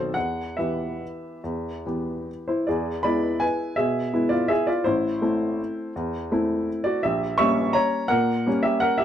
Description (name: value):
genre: classical, piano waltz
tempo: 137-175 BPM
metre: 3/4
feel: rubato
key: E minor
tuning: A4 = 440 Hz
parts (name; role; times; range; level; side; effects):
- clear upright piano; solo; 0.0-9.0 s; A1 to C#6; -22 LUFS; equal; none
room: light reverb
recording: dark, warm production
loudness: -22 LUFS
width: side -10 dB against mid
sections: 0.0-2.7 A section; 2.7-9.0 B section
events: none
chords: 0.2 Em; 2.7 E7; 4.9 Am; 7.0 A#dim7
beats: | 0.16 0.58 1.01 | 1.44 1.86 2.29 | 2.69 3.05 3.42 | 3.78 4.13 4.50 | 4.86 5.22 5.59 | 5.96 6.32 6.68 | 7.04 7.39 7.76 | 8.11 8.47 8.82